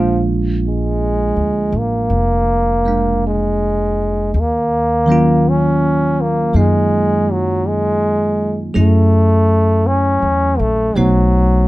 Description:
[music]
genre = jazz ballad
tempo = 54 BPM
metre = 4/4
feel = swing 67% on 8ths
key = Eb minor from 4.3 s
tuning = A4 = 440 Hz
[part]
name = clear trombone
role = melody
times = 0.0-11.7 s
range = F3 to Db4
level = -16 LUFS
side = equal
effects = none
[part]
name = bell-like tine electric piano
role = accompaniment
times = 0.0-11.7 s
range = Eb3 to C5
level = -18 LUFS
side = right 1 dB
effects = none
[part]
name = upright bass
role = bass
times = 0.0-11.7 s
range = F1 to Gb2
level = -18 LUFS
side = equal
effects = none
[sound]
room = light reverb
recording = none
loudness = -13 LUFS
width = side -18 dB against mid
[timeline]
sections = 0.0-4.3 A section; 4.3-11.7 B section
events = none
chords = 0.0 Bb7; 4.3 Ebm9; 8.8 Gbm9; 11.0 B7b9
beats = 0.99 2.10 3.22 | 4.34 5.45 6.55 7.66 | 8.76 9.86 10.96

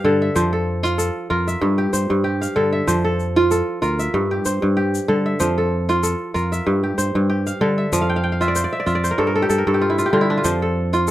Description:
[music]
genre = west african traditional, West African string and xylophone music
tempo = 95 BPM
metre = 4/4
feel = swing 54% on 16ths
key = F major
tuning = A4 = 440 Hz
[part]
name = kora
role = arpeggios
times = 0.0-11.1 s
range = G2 to G5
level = -18 LUFS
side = equal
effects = none
[part]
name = modern bright fingered electric bass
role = bass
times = 0.0-11.1 s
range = D2 to G3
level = -22 LUFS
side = equal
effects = none
[part]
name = tube shaker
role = percussion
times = 0.4-11.1 s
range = none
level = -29 LUFS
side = left 8 dB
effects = none
[sound]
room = moderate small room ambience, RT60 0.5 s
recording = rough home demo mix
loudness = -17 LUFS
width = side -14 dB against mid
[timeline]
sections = 0.0-11.1 A section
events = kora fill 8.0-10.4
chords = 0.4 F; 1.6 Gm; 2.9 F; 4.1 Gm; 5.4 F; 6.7 Gm; 7.9 F; 9.2 G5; 10.4 F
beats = | 0.36 0.99 1.62 2.25 | 2.88 3.51 4.14 4.77 | 5.40 6.03 6.66 7.29 | 7.92 8.55 9.18 9.81 | 10.44 11.07

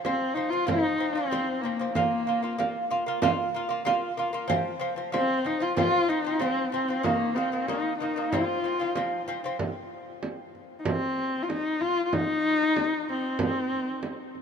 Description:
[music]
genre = mongolian traditional, Mongolian folk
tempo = 94 BPM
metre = 4/4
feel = straight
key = unclear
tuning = A4 = 440 Hz
[part]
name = lute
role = arpeggios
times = 0.0-9.6 s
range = Eb3 to F4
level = -28 LUFS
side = right 2 dB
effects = none
[part]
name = frame drum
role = percussion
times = 0.0-14.4 s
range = none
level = -32 LUFS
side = right 4 dB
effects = none
[part]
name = warm horsehead fiddle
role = melody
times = 0.1-14.4 s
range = Bb3 to F4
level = -27 LUFS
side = left 2 dB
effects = none
[sound]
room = moderate huge ambient reverb, RT60 6.0 s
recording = minimal, uncompressed stereo recording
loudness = -25 LUFS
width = side -6 dB against mid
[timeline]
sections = 0.0-9.6 A section; 9.6-14.4 A section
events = none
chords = 0.0 F5; 1.9 Bb5; 4.5 F5; 7.0 Eb5; 8.3 F5; 9.6 N.C.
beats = 0.04 0.68 1.31 | 1.95 2.58 3.22 3.85 | 4.49 5.13 5.76 6.40 | 7.04 7.67 8.31 8.95 | 9.58 10.22 10.85 11.49 | 12.12 12.76 13.39 14.03

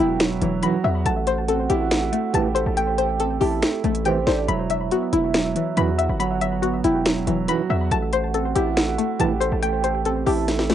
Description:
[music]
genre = hip hop, trap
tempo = 140 BPM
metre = 4/4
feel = half-time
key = unclear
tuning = A4 = 440 Hz
[part]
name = soft octave-layered synth lead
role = second line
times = 0.0-10.5 s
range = C5 to A5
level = -28 LUFS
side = right 7 dB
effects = chorus, tremolo, cassette tape, analog delay
[part]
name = dark baby grand piano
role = accompaniment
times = 0.0-10.7 s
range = F#3 to F#5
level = -25 LUFS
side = right 7 dB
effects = cassette tape
[part]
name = string-like resonator pluck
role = arpeggios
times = 0.0-10.7 s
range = E3 to B5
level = -24 LUFS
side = left 7 dB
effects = chorus, cassette tape, analog delay
[part]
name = distorted 808-style bass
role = bass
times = 0.0-10.7 s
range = E1 to E2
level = -25 LUFS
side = equal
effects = distortion
[part]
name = trap drum kit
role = drums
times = 0.2-10.7 s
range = finger snaps, hi-hat, snare drum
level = -24 LUFS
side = equal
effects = none
[part]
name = dark brass ensemble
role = stabs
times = 0.6-9.3 s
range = B1 to E3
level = -23 LUFS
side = right 6 dB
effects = cassette tape
[sound]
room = light reverb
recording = home recording on cassette, nothing above 10.8 kHz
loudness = -19 LUFS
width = side -10 dB against mid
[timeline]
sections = 0.0-10.7 A section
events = drum fill 10.5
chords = 0.0 Esus2; 1.1 Am7; 4.5 Esus2; 7.9 Am7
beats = 0.20 0.63 | 1.06 1.48 1.91 2.34 | 2.77 3.20 3.63 4.06 | 4.48 4.91 5.34 5.77 | 6.20 6.63 7.06 7.48 | 7.91 8.34 8.77 9.20 | 9.63 10.06 10.48

